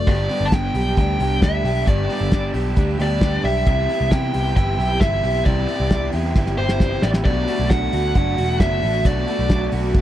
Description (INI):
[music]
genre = jangly indie pop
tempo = 134 BPM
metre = 4/4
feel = straight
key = G major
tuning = A4 = 440 Hz
[part]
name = dark smooth lead guitar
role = melody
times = 0.0-9.7 s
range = C5 to A5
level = -24 LUFS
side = equal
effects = overdrive, tape echo
[part]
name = electric guitar through a small old amp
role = arpeggios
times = 0.0-10.0 s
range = G2 to G4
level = -27 LUFS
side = left 3 dB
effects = ensemble chorus
[part]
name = vintage muted picked electric bass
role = bass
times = 0.0-10.0 s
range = E1 to C3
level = -22 LUFS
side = equal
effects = none
[part]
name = crunchy overdriven guitar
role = accompaniment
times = 0.1-10.0 s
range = G2 to G4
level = -27 LUFS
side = right 5 dB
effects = none
[part]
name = string machine, full ensemble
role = sustained chords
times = 0.1-10.0 s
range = F#4 to E6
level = -32 LUFS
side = equal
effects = phaser, ensemble chorus
[part]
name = cloth-damped thuddy drum kit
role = drums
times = 0.1-10.0 s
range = crash cymbal, hi-hat, kick drum, snare drum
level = -18 LUFS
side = equal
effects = none
[sound]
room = little or no reverb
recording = dry, close 1970s-style studio recording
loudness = -17 LUFS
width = side -12 dB against mid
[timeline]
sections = 0.1-10.0 A section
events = drum fill 6.4-7.3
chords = 0.1 G; 3.7 Cmaj7; 7.3 Bm7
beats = | 0.08 0.53 0.97 1.42 | 1.87 2.32 2.77 3.22 | 3.67 4.11 4.56 5.01 | 5.46 5.91 6.36 6.80 | 7.25 7.70 8.15 8.60 | 9.05 9.50 9.95